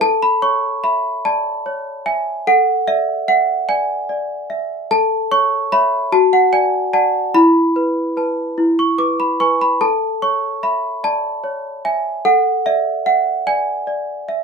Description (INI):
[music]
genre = classical, lullaby for celesta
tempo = 49 BPM (dotted quarters)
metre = 6/8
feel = straight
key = A major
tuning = A4 = 440 Hz
[part]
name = worn celesta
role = solo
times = 0.0-14.4 s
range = E4 to D6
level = -15 LUFS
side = right 1 dB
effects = none
[sound]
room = light reverb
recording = minimal, uncompressed stereo recording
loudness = -15 LUFS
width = side -5 dB against mid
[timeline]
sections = 0.0-14.4 A section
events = none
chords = 0.0 A; 2.5 E7/A; 4.9 A; 6.1 D/F#; 7.3 Esus4; 8.6 E; 9.8 A; 12.3 E7/A